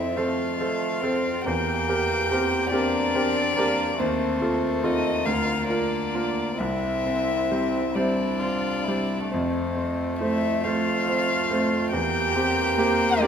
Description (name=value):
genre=classical, slow romantic movement for piano quartet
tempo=44-48 BPM (dotted quarters)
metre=6/8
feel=rubato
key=F major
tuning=A4 = 439 Hz
part: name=warm violin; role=melody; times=0.0-13.3 s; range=C5 to G5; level=-27 LUFS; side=left 5 dB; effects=none
part: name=dark cello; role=second line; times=0.0-13.3 s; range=C4 to G4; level=-31 LUFS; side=right 7 dB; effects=none
part: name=rich violin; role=second line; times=0.0-13.3 s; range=A3 to F4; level=-31 LUFS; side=equal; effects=none
part: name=bright concert grand piano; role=accompaniment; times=0.0-13.3 s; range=C2 to C5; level=-25 LUFS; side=right 1 dB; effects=none
room=moderate concert hall reverb, RT60 1.9 s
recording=none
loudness=-22 LUFS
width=side -8 dB against mid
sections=0.0-13.3 A section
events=none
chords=0.0 F; 1.5 C7/E; 4.0 F7/Eb; 5.3 Bb/D; 6.6 C; 9.3 F; 11.9 C7/E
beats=0.18 | 1.46 2.73 | 3.99 5.26 | 6.59 7.95 | 9.32 10.64 | 11.94 13.22